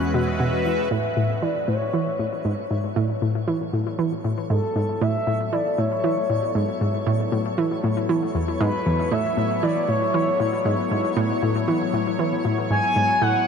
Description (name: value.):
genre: ambient, sequencer-driven space music.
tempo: 117 BPM.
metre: 4/4.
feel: straight.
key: A major.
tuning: A4 = 441 Hz.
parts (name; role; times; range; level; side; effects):
sweeping resonant pad; sustained chords; 0.0-13.5 s; F#3 to E5; -29 LUFS; left 2 dB; chorus.
analog pluck; riff; 0.0-13.4 s; E2 to E3; -23 LUFS; equal; chorus, ping-pong delay.
analog drone; bass; 0.0-0.9 s; E2; -31 LUFS; right 1 dB; chorus.
twinkling granular texture; texture; 0.0-13.5 s; C#5 to F#5; -38 LUFS; right 1 dB; built-in reverb, wide subtle chorus.
expressive portamento lead; melody; 0.4-13.5 s; A4 to G#5; -25 LUFS; left 1 dB; lush chorus, cassette tape, ping-pong delay.
room: wet huge ambient reverb, RT60 9.7 s.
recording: dreamy mix soaked in reverb.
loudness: -20 LUFS.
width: side -6 dB against mid.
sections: 0.9-13.5 A section.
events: fade-in on analog synth pad 0.9-13.5; fade-in on synth texture 0.9-13.5.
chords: 0.0 E; 0.9 A6.